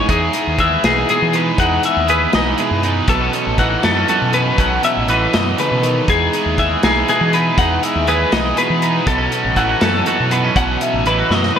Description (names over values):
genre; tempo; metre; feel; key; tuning
math rock and midwest emo; 80 BPM (dotted quarters); 6/8; straight; E major; A4 = 444 Hz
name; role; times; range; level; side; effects
clean electric guitar; accompaniment; 0.0-11.6 s; F#2 to G#4; -21 LUFS; right 5 dB; wide subtle chorus
twelve-string electric guitar; arpeggios; 0.0-11.6 s; G#4 to F#5; -18 LUFS; left 4 dB; lush chorus
overdriven electric guitar; riff; 0.0-11.6 s; F#3 to A4; -20 LUFS; right 1 dB; lush chorus
growling fingered electric bass; bass; 0.1-11.5 s; A1 to E3; -21 LUFS; equal; overdrive
modern studio drum kit; drums; 0.1-11.5 s; hi-hat, kick drum, snare drum; -21 LUFS; equal; gated reverb
room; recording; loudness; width
moderate lush hall reverb, RT60 1.8 s; bright 1980s-style digital production; -13 LUFS; side -8 dB against mid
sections
0.1-11.6 A section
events
drum fill 11.3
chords
0.1 Emaj7; 3.1 B9sus4; 6.1 Emaj7; 9.1 B9sus4